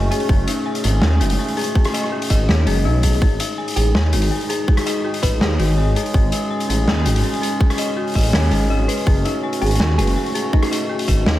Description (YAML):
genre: half-time drum and bass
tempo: 164 BPM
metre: 4/4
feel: half-time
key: G# phrygian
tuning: A4 = 440 Hz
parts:
  - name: dark analog pad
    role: sustained chords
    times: 0.0-11.4 s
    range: G#3 to G#4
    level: -25 LUFS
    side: right 1 dB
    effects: chorus, sidechain pumping
  - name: dark detuned synth bell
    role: arpeggios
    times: 0.0-11.4 s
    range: D#4 to G#5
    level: -25 LUFS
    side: left 4 dB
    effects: chorus, tape echo
  - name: dark detuned saw bass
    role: bass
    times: 0.0-11.4 s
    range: F#1 to D#2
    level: -18 LUFS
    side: equal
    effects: none
  - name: thumb-piano-like synth pluck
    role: melody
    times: 0.1-0.6, 3.8-5.6, 9.6-10.8 s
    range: D#4 to C#5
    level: -30 LUFS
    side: right 1 dB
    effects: chorus, phaser, tape echo
  - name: raw garage drum kit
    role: drums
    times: 0.1-11.3 s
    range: hi-hat, rim click, snare drum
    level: -23 LUFS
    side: left 1 dB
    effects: none
  - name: electronic kick drum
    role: drums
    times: 0.3-11.2 s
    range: none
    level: -16 LUFS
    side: equal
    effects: none
room: light reverb, small room reverb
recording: none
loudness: -16 LUFS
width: side -14 dB against mid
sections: 0.0-11.4 A section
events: none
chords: 0.0 F#m; 3.2 G#5; 9.1 F#m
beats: | 0.29 0.66 1.02 1.39 | 1.75 2.12 2.48 2.85 | 3.22 3.58 3.95 4.31 | 4.68 5.05 5.41 5.78 | 6.14 6.51 6.88 7.24 | 7.61 7.97 8.34 8.71 | 9.07 9.44 9.80 10.17 | 10.53 10.90 11.27